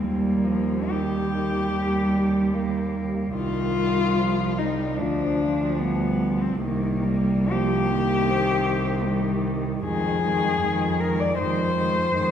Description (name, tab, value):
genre	classical, lyrical piece for cello ensemble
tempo	73 BPM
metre	4/4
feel	uneven beats, rubato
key	unclear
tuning	A4 = 440 Hz
part	muted cello	melody	0.0-12.3 s	Bb3 to D5	-26 LUFS	left 4 dB	none
part	muted cello	second line	0.0-12.3 s	F3 to C4	-27 LUFS	right 4 dB	none
part	muted cello	accompaniment	0.0-12.3 s	Eb3 to Bb3	-29 LUFS	equal	none
part	muted cello	bass	0.0-12.3 s	C2 to F2	-27 LUFS	right 1 dB	none
room	wet scoring stage reverb, RT60 2.0 s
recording	heard from further back in the room, lossy compression artefacts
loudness	-21 LUFS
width	side -9 dB against mid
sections	0.0-12.3 A section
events	none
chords	0.0 Eb; 3.4 Cm; 5.0 G5/D; 6.6 Cm; 9.8 Fm7